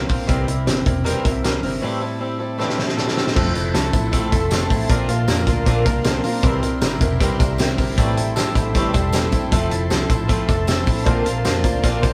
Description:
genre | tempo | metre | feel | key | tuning
jangly indie pop | 156 BPM | 4/4 | straight | F major | A4 = 440 Hz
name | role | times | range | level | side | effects
fingerpicked twelve-string acoustic guitar | accompaniment | 0.0-12.1 s | A2 to C5 | -28 LUFS | equal | none
direct-recorded clean electric guitar | arpeggios | 0.0-12.1 s | A2 to C5 | -27 LUFS | equal | none
vintage muted fingered electric bass | bass | 0.0-12.1 s | E1 to F2 | -27 LUFS | equal | none
loose indie drum kit | drums | 0.1-12.1 s | crash cymbal, hi-hat, kick drum, snare drum | -22 LUFS | equal | none
lush unison pad | sustained chords | 4.0-12.1 s | A4 to C6 | -32 LUFS | equal | chorus, phaser
tambourine | percussion | 3.6-12.1 s | none | -41 LUFS | equal | none
room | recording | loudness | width
moderate studio reverb, RT60 0.9 s | band playing live in one room | -19 LUFS | mono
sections
0.0-3.4 A section; 3.4-12.1 B section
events
drum fill 2.6-3.4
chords
0.3 C7; 1.8 Am7; 3.4 Fmaj7; 4.9 Bbadd9; 6.4 C7; 8.0 Am7; 9.5 Fmaj7; 11.1 Bbadd9

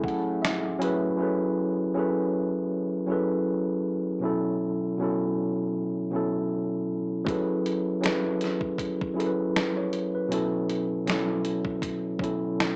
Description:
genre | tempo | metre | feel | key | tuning
lo-fi hip hop | 79 BPM | 4/4 | swing 59% on 16ths | F# minor | A4 = 440 Hz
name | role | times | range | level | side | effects
mellow tine electric piano | accompaniment | 0.0-12.8 s | B2 to G#5 | -28 LUFS | equal | cassette tape
warm analog pad | sustained chords | 0.0-1.2 s | A2 to E4 | -41 LUFS | equal | chorus
dusty soul sampler-style drum kit | drums | 0.0-1.0, 7.3-12.8 s | finger snaps, hi-hat, kick drum, snare drum | -33 LUFS | equal | none
room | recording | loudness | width
wet small room reverb, RT60 0.5 s | worn, warbling old tape, cassette tape, warbly pitch drift, small speaker sound | -28 LUFS | mono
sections
0.0-1.2 A section; 1.2-12.8 B section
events
none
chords
0.0 F#m11; 4.2 B9sus4; 7.3 F#m11; 10.3 B9sus4

